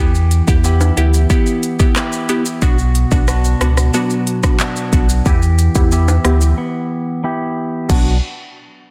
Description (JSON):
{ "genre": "dancehall", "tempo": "91 BPM", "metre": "4/4", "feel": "straight", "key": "B minor", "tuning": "A4 = 440 Hz", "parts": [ { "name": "wavetable chord stab", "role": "accompaniment", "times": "0.0-8.1 s", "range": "B3 to G4", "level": "-23 LUFS", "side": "equal", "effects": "low-pass filter" }, { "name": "clean electric guitar", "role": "arpeggios", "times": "0.0-8.2 s", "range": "B2 to G4", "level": "-23 LUFS", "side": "equal", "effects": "low-pass filter" }, { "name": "warm sub bass", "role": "bass", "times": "0.0-8.2 s", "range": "B1 to E2", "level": "-16 LUFS", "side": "equal", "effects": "none" }, { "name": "afro-pop drum kit", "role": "drums", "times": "0.1-8.1 s", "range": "crash cymbal, handclaps, hi-hat, kick drum, rim click, shaker", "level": "-19 LUFS", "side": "equal", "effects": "none" }, { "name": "maracas and timbales", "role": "percussion", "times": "0.1-8.2 s", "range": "none", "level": "-30 LUFS", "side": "equal", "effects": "none" } ], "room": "little or no reverb", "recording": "dense, heavily limited modern master", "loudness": "-15 LUFS", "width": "mono", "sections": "0.0-7.9 A section; 7.9-8.9 B section", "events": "filter sweep 0.0-7.9; break 6.6-7.9", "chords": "0.0 Em; 2.6 Bm; 5.3 Em; 7.9 Bm", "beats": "0.64 1.30 1.96 | 2.62 3.28 3.94 4.60 | 5.26 5.92 6.58 7.24 | 7.90" }